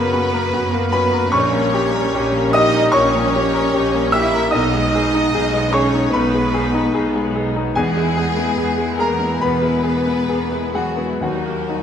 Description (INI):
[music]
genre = classical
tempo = 74 BPM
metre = 4/4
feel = rubato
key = G# minor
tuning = A4 = 441 Hz
[part]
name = clear concert grand piano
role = melody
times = 0.0-11.8 s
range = A#1 to E6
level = -18 LUFS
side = left 2 dB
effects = none
[part]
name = dark chamber violin section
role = melody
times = 0.0-11.8 s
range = F#4 to E5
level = -28 LUFS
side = left 1 dB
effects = none
[part]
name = rich chamber violin section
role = second line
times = 0.0-11.8 s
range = F#4 to E5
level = -25 LUFS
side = left 1 dB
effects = none
[part]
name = bright chamber viola section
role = accompaniment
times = 0.0-11.8 s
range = E3 to G4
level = -27 LUFS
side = right 1 dB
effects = none
[part]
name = rich chamber cello section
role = bass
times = 0.0-11.8 s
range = F#3 to E4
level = -24 LUFS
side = right 2 dB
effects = none
[part]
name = rich studio double bass section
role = bass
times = 0.0-11.8 s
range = A#1 to Gb2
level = -26 LUFS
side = right 4 dB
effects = none
[sound]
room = moderate scoring stage reverb, RT60 1.8 s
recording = none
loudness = -15 LUFS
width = side -8 dB against mid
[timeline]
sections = 0.0-11.8 A section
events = none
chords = 0.0 Gb; 1.3 D#7/A#; 4.5 G#m/B; 7.8 E; 11.2 D#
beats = 0.54 | 1.32 2.13 2.94 3.73 | 4.53 5.33 6.12 6.93 | 7.76 8.57 9.41 10.29 | 11.22